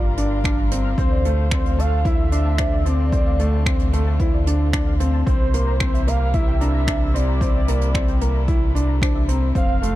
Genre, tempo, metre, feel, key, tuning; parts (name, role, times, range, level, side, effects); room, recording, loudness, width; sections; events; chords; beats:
piano and strings electronica; 112 BPM; 4/4; straight; A4 = 441 Hz
warm velvety synth lead; melody; 0.0-10.0 s; C5 to F5; -29 LUFS; right 2 dB; chorus, cassette tape
muted string quartet; sustained chords; 0.0-10.0 s; C3 to Bb4; -32 LUFS; equal; sidechain pumping
soft round pluck; arpeggios; 0.0-9.9 s; C5 to F6; -35 LUFS; left 2 dB; ensemble chorus, sidechain pumping, ping-pong delay
felt-muted upright piano; riff; 0.0-10.0 s; A3 to E4; -26 LUFS; left 1 dB; ping-pong delay
round analog bass; bass; 0.0-10.0 s; F1 to D2; -20 LUFS; equal; sidechain pumping
jazz brush drum kit; drums; 0.2-9.9 s; finger snaps, hi-hat; -31 LUFS; right 2 dB
electronic kick drum; drums; 0.4-9.7 s; -22 LUFS; equal
studio ambience; dark, warm production; -17 LUFS; side -15 dB against mid
0.0-10.0 A section
0.0 Gm7; 1.0 Dm7; 5.3 C7
0.45 | 0.98 1.52 2.05 2.59 | 3.13 3.66 4.20 4.73 | 5.27 5.80 6.34 6.88 | 7.41 7.95 8.48 9.02 | 9.55